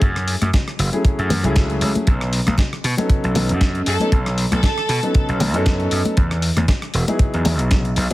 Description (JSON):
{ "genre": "nu-disco, nu disco", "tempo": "117 BPM", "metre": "4/4", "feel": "swing 55% on 16ths", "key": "unclear", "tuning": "A4 = 440 Hz", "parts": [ { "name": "gritty slap bass", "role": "bass", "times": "0.0-8.1 s", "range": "E1 to B2", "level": "-20 LUFS", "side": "equal", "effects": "overdrive" }, { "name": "dusty soul sampler-style drum kit", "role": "drums", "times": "0.0-8.1 s", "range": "hi-hat, rim click, snare drum", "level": "-25 LUFS", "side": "left 1 dB", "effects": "none" }, { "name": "kick drum", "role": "drums", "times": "0.0-7.8 s", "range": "none", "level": "-17 LUFS", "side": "equal", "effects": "none" }, { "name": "congas", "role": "percussion", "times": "0.4-8.1 s", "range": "none", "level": "-23 LUFS", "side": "left 2 dB", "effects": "none" }, { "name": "warm concert grand piano", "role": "accompaniment", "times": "0.9-8.1 s", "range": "F#3 to A4", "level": "-23 LUFS", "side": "left 1 dB", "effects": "ping-pong delay" }, { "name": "clear studio violin section", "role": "melody", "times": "3.9-5.2 s", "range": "A4", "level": "-26 LUFS", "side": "right 1 dB", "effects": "ping-pong delay" } ], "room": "small room ambience", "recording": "heavily compressed radio sound", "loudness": "-16 LUFS", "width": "side -17 dB against mid", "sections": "0.0-8.1 A section", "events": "none", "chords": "0.0 F#m9; 2.1 B7; 6.2 Emaj7" }